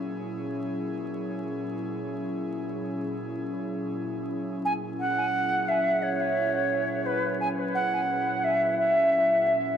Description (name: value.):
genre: ambient.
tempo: free time.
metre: none.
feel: none.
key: F# mixolydian.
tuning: A4 = 443 Hz.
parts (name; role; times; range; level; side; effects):
airy breathy pad; sustained chords; 0.0-9.8 s; A#2 to G#4; -31 LUFS; left 1 dB; chorus.
concert flute; melody; 4.7-9.8 s; B4 to G#5; -23 LUFS; right 1 dB; dub echo.
room: wet spring reverb, RT60 2.7 s.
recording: vinyl crackle.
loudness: -25 LUFS.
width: side -8 dB against mid.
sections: 0.0-9.8 A section.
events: none.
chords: 0.0 F#9.